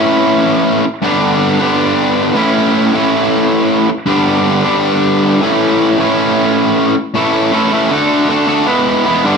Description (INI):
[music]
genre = punk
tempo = 157 BPM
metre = 4/4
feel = straight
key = A mixolydian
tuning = A4 = 440 Hz
[part]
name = distorted electric guitar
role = solo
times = 0.0-9.4 s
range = G2 to A4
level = -10 LUFS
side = equal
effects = overdrive
[sound]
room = wet large studio reverb, RT60 0.9 s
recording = band playing live in one room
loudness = -10 LUFS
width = side -5 dB against mid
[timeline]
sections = 0.0-7.1 A section; 7.1-9.4 B section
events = none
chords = 0.0 A; 1.0 G; 2.4 A; 4.1 G; 5.4 A; 7.9 D; 8.7 E